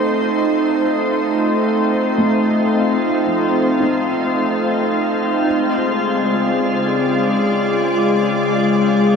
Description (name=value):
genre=ambient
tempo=free time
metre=none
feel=none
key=unclear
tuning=A4 = 435 Hz
part: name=soft additive organ-like pad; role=sustained chords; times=0.0-9.2 s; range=Ab3 to D5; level=-15 LUFS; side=equal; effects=ensemble chorus, built-in reverb
part: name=felt-muted upright piano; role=arpeggios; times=0.0-9.2 s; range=F3 to F5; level=-26 LUFS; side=equal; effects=ping-pong delay
part: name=bowed-like drone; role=drone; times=6.1-9.2 s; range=Db3 to Ab3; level=-20 LUFS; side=left 3 dB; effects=built-in reverb
room=wet shimmer reverb, RT60 6.9 s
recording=none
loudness=-15 LUFS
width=side -6 dB against mid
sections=0.0-9.2 A section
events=none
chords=0.0 F7; 5.5 Bb7 (rootless)